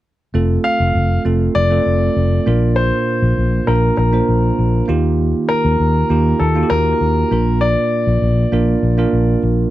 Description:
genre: 1980s-style pop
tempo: 99 BPM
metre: 4/4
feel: straight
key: Bb major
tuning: A4 = 441 Hz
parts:
  - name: bell-like tine electric piano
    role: accompaniment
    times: 0.3-9.7 s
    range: Bb2 to C5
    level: -18 LUFS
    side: right 4 dB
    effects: none
  - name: fretless electric bass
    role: bass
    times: 0.3-9.7 s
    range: F1 to Eb2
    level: -16 LUFS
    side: left 1 dB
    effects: none
  - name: clear concert grand piano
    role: melody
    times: 0.6-9.4 s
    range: A4 to F5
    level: -19 LUFS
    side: left 2 dB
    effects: none
room: little or no reverb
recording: dry, close 1970s-style studio recording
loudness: -13 LUFS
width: side -15 dB against mid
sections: 0.3-9.7 A section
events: none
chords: 0.3 F; 2.5 Bb; 4.9 Ebadd9; 7.3 Bb

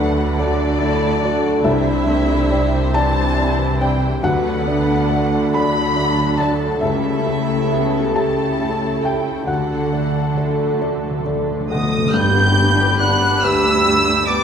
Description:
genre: cinematic, emotional film score for orchestra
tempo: 46 BPM (dotted quarters)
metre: 6/8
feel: uneven beats, rubato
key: G major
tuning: A4 = 440 Hz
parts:
  - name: muted studio violin section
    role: melody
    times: 0.0-14.4 s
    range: A4 to G6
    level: -24 LUFS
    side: left 1 dB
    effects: none
  - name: muted symphonic violin section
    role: second line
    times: 0.0-14.4 s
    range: G3 to B5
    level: -26 LUFS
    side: left 1 dB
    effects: none
  - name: felt-muted upright piano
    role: accompaniment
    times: 0.0-14.4 s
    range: C2 to B5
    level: -22 LUFS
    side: left 1 dB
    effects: none
  - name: muted symphonic viola section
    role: accompaniment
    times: 0.0-14.4 s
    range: E3 to F#4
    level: -26 LUFS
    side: right 2 dB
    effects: none
  - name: mellow French horn section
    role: sustained chords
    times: 0.0-14.4 s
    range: G3 to A4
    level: -24 LUFS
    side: left 1 dB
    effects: none
  - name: concert harp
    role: arpeggios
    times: 0.0-14.4 s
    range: G2 to A5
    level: -25 LUFS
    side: left 2 dB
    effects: none
  - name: muted symphonic cello section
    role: bass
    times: 0.0-14.4 s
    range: D2 to D3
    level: -24 LUFS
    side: right 2 dB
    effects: none
  - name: muted symphonic double bass section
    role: bass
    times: 0.0-14.4 s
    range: G1 to D2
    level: -25 LUFS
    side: right 2 dB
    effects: none
  - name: timpani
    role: percussion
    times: 4.2-5.5, 9.5-12.1 s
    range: D3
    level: -27 LUFS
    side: left 1 dB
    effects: none
  - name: warm oboe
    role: second line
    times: 11.7-14.4 s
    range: D5 to G5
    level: -25 LUFS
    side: right 2 dB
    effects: none
  - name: dark clarinet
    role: second line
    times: 12.1-14.4 s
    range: G4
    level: -26 LUFS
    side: right 2 dB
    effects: none
  - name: mellow hollow silver concert flute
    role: second line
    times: 12.1-14.4 s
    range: B5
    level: -24 LUFS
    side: left 2 dB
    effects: none
  - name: tam-tam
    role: percussion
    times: 12.1-14.4 s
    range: none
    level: -28 LUFS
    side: equal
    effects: none
room: wet scoring stage reverb, RT60 1.6 s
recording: minimal, uncompressed stereo recording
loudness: -15 LUFS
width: side -7 dB against mid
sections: 0.0-12.1 A section; 12.1-14.4 B section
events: timpani fill 9.5-12.1; band accent 12.1-13.0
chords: 0.0 D; 1.6 Cadd9; 4.2 D; 6.8 A7/C#; 9.5 D; 12.1 G

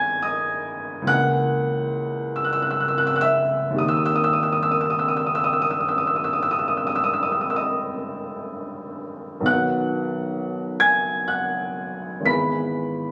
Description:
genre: classical, romantic nocturne for solo piano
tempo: 39-48 BPM (dotted quarters)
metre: 12/8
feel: rubato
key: unclear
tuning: A4 = 439 Hz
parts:
  - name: warm upright piano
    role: solo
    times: 0.0-13.1 s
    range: G#1 to B6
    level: -23 LUFS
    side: equal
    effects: none
room: moderate recital hall reverb, RT60 1.6 s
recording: recorded on a phone in the room, studio ambience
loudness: -22 LUFS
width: mono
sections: 0.0-13.1 A section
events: none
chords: 0.0 G#m; 1.1 A#dim/C#; 3.8 D#; 9.5 B; 12.3 E/G#

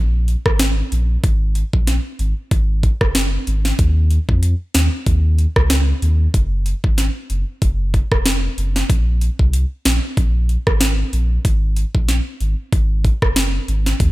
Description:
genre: dancehall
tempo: 94 BPM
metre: 4/4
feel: swing 56% on 16ths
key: unclear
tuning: A4 = 439 Hz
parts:
  - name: sub bass with octave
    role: bass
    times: 0.0-14.1 s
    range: F1 to F2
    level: -17 LUFS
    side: equal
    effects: none
  - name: island pop drum kit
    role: drums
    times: 0.3-14.1 s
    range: hi-hat, kick drum, rim click, snare drum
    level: -18 LUFS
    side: equal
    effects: overdrive
room: little or no reverb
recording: none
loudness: -15 LUFS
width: side -18 dB against mid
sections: 0.0-14.1 A section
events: none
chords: none

